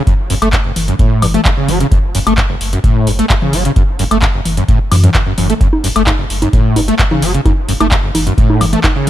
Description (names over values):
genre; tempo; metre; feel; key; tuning
acid house; 130 BPM; 4/4; straight; F# minor pentatonic; A4 = 440 Hz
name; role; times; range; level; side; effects
overdriven acid bass; riff; 0.1-9.1 s; F#1 to A3; -15 LUFS; equal; distortion, tube saturation, ensemble chorus, sidechain pumping, dub echo
booming analog drum machine; drums; 0.1-9.1 s; congas, handclaps, hi-hat, toms, woodblock; -16 LUFS; left 1 dB; none
electronic kick drum; drums; 0.1-8.9 s; none; -13 LUFS; equal; none
saturated sub bass; bass; 0.3-9.1 s; F#1 to F#2; -17 LUFS; equal; sidechain pumping
room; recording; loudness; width
little or no reverb; none; -10 LUFS; side -12 dB against mid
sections
0.0-9.1 A section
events
none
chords
0.0 F#m